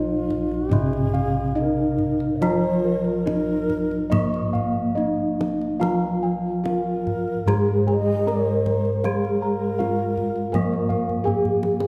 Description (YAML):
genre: Javanese gamelan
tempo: 70-86 BPM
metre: 4/4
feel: straight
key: Bb slendro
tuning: A4 = 440 Hz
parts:
  - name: gamelan-type bronze metallophone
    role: melody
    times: 0.0-11.9 s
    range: Bb3 to Bb4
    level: -27 LUFS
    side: equal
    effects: none
  - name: breathy mellow xiao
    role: second line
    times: 0.0-11.1 s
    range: F4+21c to Eb5+39c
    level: -32 LUFS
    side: equal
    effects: none
  - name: gamelan-type bronze metallophone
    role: accompaniment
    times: 0.0-11.9 s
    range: C3+40c to Bb3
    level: -29 LUFS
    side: equal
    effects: none
  - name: gamelan-type bossed gongs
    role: arpeggios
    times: 0.0-11.7 s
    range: Bb4 to Bb5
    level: -32 LUFS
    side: equal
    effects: none
  - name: gamelan-type bossed gongs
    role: bass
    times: 0.0-11.9 s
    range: Bb1 to Ab4-40c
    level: -30 LUFS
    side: equal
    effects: none
  - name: kendang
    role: percussion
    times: 0.3-11.9 s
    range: none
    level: -31 LUFS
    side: equal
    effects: none
room: wet church reverb, RT60 2.9 s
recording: recorded in a church or concert hall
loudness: -23 LUFS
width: mono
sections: 0.0-11.9 A section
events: drum fill 11.1-11.9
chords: none